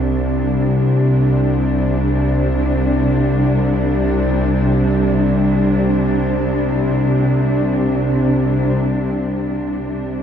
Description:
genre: dark ambient drone.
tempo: free time.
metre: none.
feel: none.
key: unclear.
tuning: A4 = 439 Hz.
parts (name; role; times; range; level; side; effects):
dark studio cello section; sustained chords; 0.0-10.2 s; C3 to D4; -18 LUFS; equal; none.
bowed-like drone; drone; 0.0-10.2 s; C2 to C3; -17 LUFS; equal; built-in reverb.
room: wet huge ambient reverb, RT60 7.4 s.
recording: none.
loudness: -14 LUFS.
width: side -8 dB against mid.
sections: 0.0-9.2 A section; 9.2-10.2 B section.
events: none.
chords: 0.0 C5.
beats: free time.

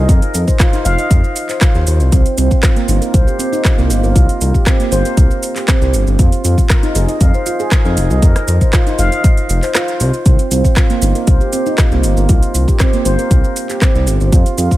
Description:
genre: afro house.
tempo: 118 BPM.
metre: 4/4.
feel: straight.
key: C minor.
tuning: A4 = 441 Hz.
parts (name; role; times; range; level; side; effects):
handpan; arpeggios; 0.0-14.7 s; Bb3 to F5; -18 LUFS; right 2 dB; sidechain pumping, dub echo.
smooth gliding synth bass; bass; 0.0-14.7 s; F1 to F2; -14 LUFS; equal; sidechain pumping.
electronic kick drum; drums; 0.1-14.8 s; none; -11 LUFS; equal; none.
house drum kit; drums; 0.1-14.8 s; handclaps, hi-hat, rim click, shaker; -21 LUFS; right 1 dB; none.
room: digital ambience.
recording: none.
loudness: -11 LUFS.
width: side -16 dB against mid.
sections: 0.0-14.8 A section.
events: break 9.7-10.3.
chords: 0.0 F5; 2.1 C5; 6.2 F5; 10.3 C5.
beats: | 0.09 0.60 1.10 1.61 | 2.12 2.63 3.14 3.65 | 4.16 4.66 5.17 5.68 | 6.19 6.70 7.21 7.71 | 8.22 8.73 9.24 9.75 | 10.26 10.77 11.27 11.78 | 12.29 12.80 13.31 13.82 | 14.32.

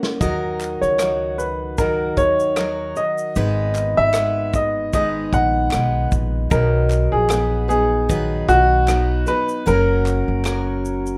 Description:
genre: acoustic pop.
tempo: 76 BPM.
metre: 4/4.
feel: swing 55% on 16ths.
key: B major.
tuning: A4 = 440 Hz.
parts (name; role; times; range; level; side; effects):
picked steel-string acoustic guitar; accompaniment; 0.0-11.2 s; G#2 to B4; -26 LUFS; equal; none.
natural country drum kit; drums; 0.0-11.2 s; kick drum, rim click, shaker, snare drum; -27 LUFS; equal; none.
clear upright piano; melody; 0.2-11.2 s; F#4 to F#5; -22 LUFS; equal; none.
upright bass; bass; 0.2-11.2 s; F#1 to D#2; -25 LUFS; equal; none.
group handclap; percussion; 0.6-10.7 s; none; -36 LUFS; equal; none.
room: moderate studio reverb, RT60 0.6 s.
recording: rough home demo mix.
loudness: -19 LUFS.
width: mono.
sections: 0.0-11.2 A section.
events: drum fill 0.0.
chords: 0.2 D#m; 3.4 G#m; 6.5 B; 9.7 F#.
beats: | 0.21 1.00 1.79 2.58 | 3.36 4.15 4.94 5.73 | 6.52 7.30 8.09 8.88 | 9.67 10.45.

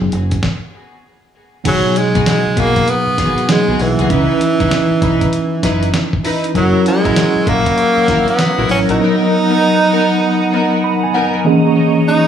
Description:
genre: R&B, new jack swing.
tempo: 98 BPM.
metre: 4/4.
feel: swing 64% on 16ths.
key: C# dorian.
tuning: A4 = 439 Hz.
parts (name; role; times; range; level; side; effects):
mellow tine electric piano; accompaniment; 0.0-12.3 s; B2 to B5; -16 LUFS; equal; medium stereo tremolo.
deep dub fingered electric bass; bass; 0.0-9.0 s; F#1 to C#2; -20 LUFS; equal; none.
dusty soul sampler-style drum kit; drums; 0.1-9.0 s; crash cymbal, hi-hat, kick drum, snare drum; -19 LUFS; equal; none.
dark studio string section; stabs; 1.6-11.3 s; B3 to B4; -21 LUFS; left 2 dB; tape echo.
breathy tenor saxophone; melody; 1.7-12.3 s; E3 to D#4; -15 LUFS; right 1 dB; tape echo.
phased analog pad; sustained chords; 6.6-12.3 s; B3 to E6; -22 LUFS; right 3 dB; phaser, chorus.
room: light reverb, digital ambience.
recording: studio reverb.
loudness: -12 LUFS.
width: side -8 dB against mid.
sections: 0.0-1.7 A section; 1.7-11.4 B section.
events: stop 0.4-1.7; tine electric piano fill 10.5-11.4.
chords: 0.1 N.C.; 1.7 G#m7; 4.1 C#m9; 6.6 F#7; 9.0 Bmaj7; 11.4 C#m69.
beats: 0.43 1.04 | 1.65 2.27 2.88 3.49 | 4.10 4.71 5.33 5.94 | 6.55 7.16 7.78 8.39 | 9.00 9.61 10.22 10.84 | 11.45 12.06.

